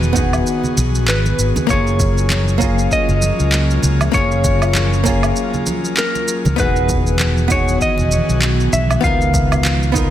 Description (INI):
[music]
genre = sunset chillout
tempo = 98 BPM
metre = 4/4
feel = swing 58% on 16ths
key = F# major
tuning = A4 = 440 Hz
[part]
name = clean electric guitar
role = melody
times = 0.0-10.1 s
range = A#4 to E#5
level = -22 LUFS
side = left 1 dB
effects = tremolo, digital delay
[part]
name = archtop guitar, miked and amplified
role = accompaniment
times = 0.0-10.1 s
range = A#3 to A#4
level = -22 LUFS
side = equal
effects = auto-pan, ping-pong delay
[part]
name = airy breathy pad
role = sustained chords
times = 0.0-10.1 s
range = C#3 to A#4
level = -23 LUFS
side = equal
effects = chorus, vintage 12-bit sampler grit
[part]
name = fretless electric bass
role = bass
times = 0.0-10.1 s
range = E1 to C#2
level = -17 LUFS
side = equal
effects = none
[part]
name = electronic shaker, woodblock and handclaps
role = drums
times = 0.0-10.1 s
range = none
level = -22 LUFS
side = right 2 dB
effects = overdrive
[part]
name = electronic kick drum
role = drums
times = 0.2-10.1 s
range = none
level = -21 LUFS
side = equal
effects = overdrive
[part]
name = congas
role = percussion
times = 0.6-9.8 s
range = none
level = -26 LUFS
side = right 2 dB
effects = none
[sound]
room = moderate scoring stage reverb, RT60 1.6 s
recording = dense, heavily limited modern master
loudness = -13 LUFS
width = side -12 dB against mid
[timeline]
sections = 0.0-10.1 A section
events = none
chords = 0.0 Emaj9; 1.7 F#maj9; 6.6 Emaj9; 9.0 C#13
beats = 0.46 1.07 | 1.69 2.30 2.91 3.52 | 4.14 4.75 5.36 5.97 | 6.59 7.20 7.81 8.42 | 9.04 9.65